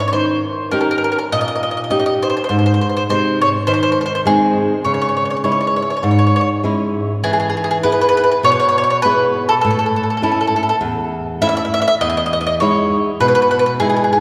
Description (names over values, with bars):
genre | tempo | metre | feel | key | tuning
italian folk, Italian serenade | 101 BPM | 4/4 | swing 55% on 8ths | E major from 7.2 s | A4 = 439 Hz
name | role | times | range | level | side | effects
mandolin | melody | 0.0-14.2 s | G#4 to E5 | -18 LUFS | equal | none
flamenco guitar | accompaniment | 0.1-14.2 s | E2 to G#4 | -20 LUFS | equal | none
room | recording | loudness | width
wet church reverb, RT60 3.4 s | recorded in a church or concert hall | -16 LUFS | mono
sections
0.0-7.2 A section; 7.2-14.2 B section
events
none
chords
0.1 D#7; 2.5 G#; 4.8 C#m; 7.2 E; 9.6 A; 12.0 Emaj7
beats
| 0.12 0.71 1.31 1.90 | 2.49 3.08 3.66 4.25 | 4.85 5.43 6.03 6.63 | 7.24 7.83 8.43 9.03 | 9.63 10.22 10.82 11.41 | 12.01 12.61 13.21 13.81